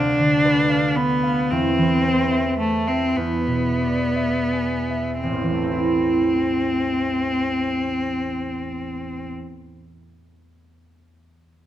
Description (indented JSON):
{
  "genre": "classical, romantic duo for cello and harp",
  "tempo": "26-40 BPM (dotted quarters)",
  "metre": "6/8",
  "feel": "rubato",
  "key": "A minor",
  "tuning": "A4 = 442 Hz",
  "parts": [
    { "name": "rich cello", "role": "melody", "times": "0.0-9.3 s", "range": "A3 to D4", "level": "-21 LUFS", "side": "left 1 dB", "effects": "none" },
    { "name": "concert harp", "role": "accompaniment", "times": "0.0-9.8 s", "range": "A1 to B5", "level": "-23 LUFS", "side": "right 2 dB", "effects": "none" }
  ],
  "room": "light reverb",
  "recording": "close, detailed microphones",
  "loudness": "-19 LUFS",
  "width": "side -12 dB against mid",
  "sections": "0.0-5.2 A section; 5.2-9.2 B section",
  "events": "slowing down 0.0-5.2",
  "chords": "0.0 Bdim/D; 1.5 Am/E; 3.2 E7; 5.2 Am"
}